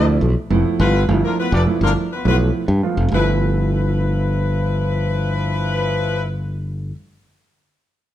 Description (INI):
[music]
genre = funk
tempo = 103 BPM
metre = 4/4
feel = straight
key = G mixolydian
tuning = A4 = 440 Hz
[part]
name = clear horn section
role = second line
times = 0.0-6.2 s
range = F3 to D5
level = -23 LUFS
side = left 3 dB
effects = none
[part]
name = dark upright piano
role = stabs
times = 0.0-6.9 s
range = F3 to F4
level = -22 LUFS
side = right 4 dB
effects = none
[part]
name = modern bright fingered electric bass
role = bass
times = 0.0-6.9 s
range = F1 to G2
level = -18 LUFS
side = equal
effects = none
[sound]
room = moderate large studio reverb, RT60 1.1 s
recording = band playing live in one room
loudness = -16 LUFS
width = side -12 dB against mid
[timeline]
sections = 0.0-3.1 A section; 3.1-5.5 B section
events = none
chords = 0.0 G13